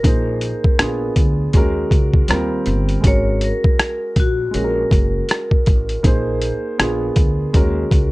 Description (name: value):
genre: hip hop, jazz-hop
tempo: 80 BPM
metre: 4/4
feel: swing 60% on 16ths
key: Bb minor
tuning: A4 = 440 Hz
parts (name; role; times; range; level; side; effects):
- vibraphone with hard mallets; melody; 0.0-8.1 s; Gb4 to Db5; -24 LUFS; equal; plate reverb
- dark upright piano; accompaniment; 0.0-8.1 s; G3 to C5; -22 LUFS; right 1 dB; plate reverb
- upright bass; bass; 0.0-8.1 s; Gb1 to Eb2; -21 LUFS; equal; none
- boom bap sampler-style drum kit; drums; 0.0-8.1 s; hi-hat, kick drum, rim click; -15 LUFS; equal; overdrive, vintage 12-bit sampler grit
room: light reverb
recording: none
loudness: -15 LUFS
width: side -20 dB against mid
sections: 0.0-8.1 A section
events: none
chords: 0.0 Bb9sus4; 0.8 Bb7b9; 1.5 Ebm7; 2.3 Ebadd9; 3.0 Ab9sus4; 4.5 Gbadd9; 6.0 Bb9sus4; 6.8 Bb7b9; 7.5 Ebm7